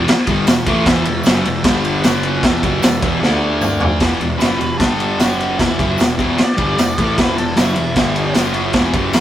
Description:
garage rock duo or trio; 152 BPM; 4/4; straight; E minor; A4 = 444 Hz
thick fuzz guitar; riff; 0.0-9.2 s; E2 to D4; -18 LUFS; equal; distortion
fuzz picked electric bass; bass; 0.0-9.2 s; E1 to D2; -25 LUFS; equal; overdrive
raw garage drum kit; drums; 0.1-9.2 s; kick drum, ride cymbal, snare drum, toms; -16 LUFS; equal
tambourine; percussion; 0.5-9.2 s; -34 LUFS; right 4 dB
combo organ; sustained chords; 0.8-9.2 s; C#4 to G5; -29 LUFS; right 1 dB
octave-fuzz lead guitar; melody; 4.4-8.4 s; E4 to D5; -23 LUFS; equal; distortion
light reverb; rough rehearsal-room recording; -13 LUFS; side -12 dB against mid
0.0-4.0 A section; 4.0-9.2 B section
drum fill 3.2-4.0; lead electric guitar solo 4.0-9.2
0.0 Em; 1.7 G5; 2.0 F#5; 2.4 Em; 3.2 D5; 4.0 Em; 4.8 G5; 5.2 F#5; 5.6 Em; 8.0 G5; 8.4 F#5

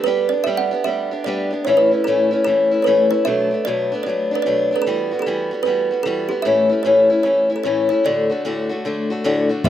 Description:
celtic folk, Celtic hornpipe; 150 BPM; 4/4; swing 63% on 8ths; D major; A4 = 440 Hz
kalimba; melody; 0.0-9.7 s; G4 to F#5; -21 LUFS; right 5 dB; slapback echo
picked old ladder-braced acoustic guitar; accompaniment; 0.0-9.7 s; D2 to G4; -18 LUFS; left 3 dB; slapback echo
upright bass; bass; 9.6-9.7 s; G1; -15 LUFS; equal
little or no reverb; recorded outdoors, with no room sound; -16 LUFS; side -11 dB against mid
0.0-9.6 A section
0.1 G; 1.7 A; 3.3 Bm7; 4.9 Emadd9; 6.5 A; 8.0 D

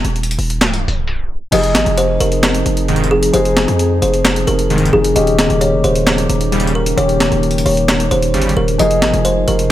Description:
hip hop, trap; 132 BPM; 4/4; half-time; F minor; A4 = 440 Hz
distorted 808-style bass; bass; 0.0-9.7 s; Eb1 to F2; -18 LUFS; equal; distortion
breakbeat sampler-style drum kit; drums; 0.0-9.7 s; crash cymbal, handclaps, hi-hat, snare drum; -18 LUFS; equal
kalimba; melody; 1.5-9.7 s; Ab4 to Eb5; -16 LUFS; equal; ping-pong delay
dark baby grand piano; accompaniment; 1.5-9.7 s; Eb3 to Ab4; -21 LUFS; left 6 dB
dark analog pad; sustained chords; 1.5-9.7 s; C3 to Ab4; -23 LUFS; right 2 dB; lush chorus
big bright polysynth; stabs; 2.9-8.5 s; C2 to G3; -18 LUFS; equal
little or no reverb; tape stop; -12 LUFS; side -13 dB against mid
0.0-1.5 A section; 1.5-9.7 B section
break 0.0-1.5; tape stop 0.6-1.5
0.0 N.C.; 1.5 Fm7; 5.2 Eb7; 8.8 Fm7

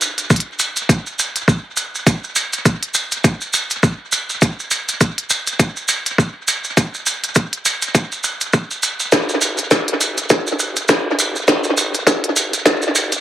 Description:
glitch hop; 102 BPM; 4/4; swing 58% on 16ths
glitchy drum kit; drums; 0.0-13.2 s; hi-hat, snare drum; -17 LUFS; equal; high-pass filter on hats, high-pass filter on snare, analog delay
maracas; percussion; 0.0-13.2 s; -20 LUFS; right 2 dB; analog delay
electronic kick drum; drums; 0.3-12.8 s; -14 LUFS; equal; high-pass filter on kick
wet spring reverb, RT60 2.1 s; echo-heavy mix, vinyl crackle, high-pass filter; -15 LUFS; side -12 dB against mid
0.0-13.2 A section
build-up 0.0-13.2; drum fill 9.1-13.2

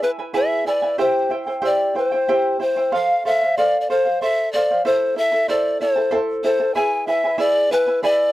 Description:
andean folk, Andean ensemble; 63 BPM (dotted quarters); 6/8; straight; A4 = 442 Hz
breathy hollow pan flute; melody; 0.0-8.3 s; B4 to G#5; -18 LUFS; left 1 dB
charango; accompaniment; 0.0-8.3 s; E4 to A5; -22 LUFS; right 1 dB
light reverb; dry, close 1970s-style studio recording; -17 LUFS; side -15 dB against mid
0.0-8.3 A section
0.0 E; 1.0 C; 2.9 F; 4.8 Am; 6.8 E

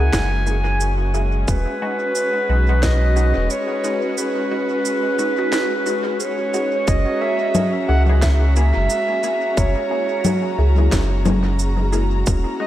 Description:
ambient dub; 89 BPM; 4/4; swing 60% on 16ths; F# mixolydian; A4 = 441 Hz
mellow clarinet; melody; 0.0-12.7 s; B4 to G#5; -22 LUFS; right 1 dB; dub echo
dark studio string section; sustained chords; 0.0-12.7 s; G#3 to A#5; -25 LUFS; equal
filtered dub chord stab; stabs; 0.0-12.7 s; G#3 to G#4; -28 LUFS; left 2 dB; phaser, dub echo
warm sub bass; bass; 0.0-12.4 s; E1 to C#2; -17 LUFS; equal; tube saturation
electronic kick drum; drums; 0.1-12.4 s; -20 LUFS; equal
electronic snare drum, cabasa and congas; drums; 0.1-12.4 s; -25 LUFS; left 1 dB; dub echo
moderate lush hall reverb, RT60 2.6 s; dreamy mix soaked in reverb; -16 LUFS; side -13 dB against mid
0.0-6.9 A section; 6.9-12.7 B section
0.0 F#9; 1.5 Emaj7 (rootless); 6.9 F#9

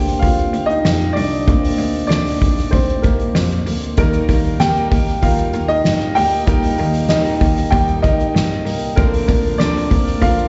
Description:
piano-driven pop; 96 BPM; 4/4; straight; A4 = 440 Hz
dark upright piano; accompaniment; 0.0-10.5 s; G3 to G5; -21 LUFS; equal; plate reverb, slapback echo
clear cello; bass; 0.0-10.5 s; C2 to G2; -23 LUFS; equal
soft-mallet drum kit; drums; 0.1-10.5 s; hi-hat, kick drum, snare drum; -20 LUFS; equal
fingerpicked steel-string acoustic guitar; riff; 4.0-10.5 s; D3 to Bb4; -27 LUFS; equal
light reverb; live gig heard through the venue's PA, recital hall reverb, nothing above 7.9 kHz; -16 LUFS; mono
0.0-10.5 A section
upright piano solo 0.0-10.5
0.0 Bbadd9

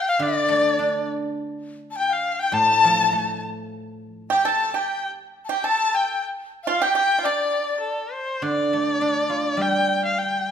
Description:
chinese traditional, Chinese chamber ensemble; 102 BPM; 2/4; straight; D yu mode; A4 = 440 Hz
rich erhu; melody; 0.0-10.5 s; A4 to A5; -22 LUFS; left 2 dB
breathy mellow dizi; second line; 0.0-8.1 s; D5 to A5; -25 LUFS; left 4 dB
guzheng; accompaniment; 0.2-4.3, 8.4-10.5 s; A2 to F4; -26 LUFS; right 3 dB
pipa; second line; 4.3-8.1 s; D4 to A4; -25 LUFS; right 8 dB
wet recital hall reverb, RT60 1.5 s; minimal, uncompressed stereo recording; -20 LUFS; side -8 dB against mid
0.0-8.4 A section; 8.4-10.5 B section

